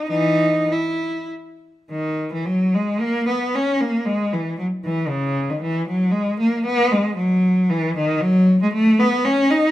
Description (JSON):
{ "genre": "classical, baroque-style suite movement for unaccompanied cello", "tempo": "97-118 BPM", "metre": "3/4", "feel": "rubato", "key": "unclear", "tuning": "A4 = 438 Hz", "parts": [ { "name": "rich cello", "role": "solo", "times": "0.0-9.7 s", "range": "C#3 to E4", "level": "-17 LUFS", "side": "equal", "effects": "none" } ], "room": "light reverb", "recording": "close, detailed microphones", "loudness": "-17 LUFS", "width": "side -14 dB against mid", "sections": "0.0-1.9 A section; 1.9-9.7 A section", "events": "none", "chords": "none" }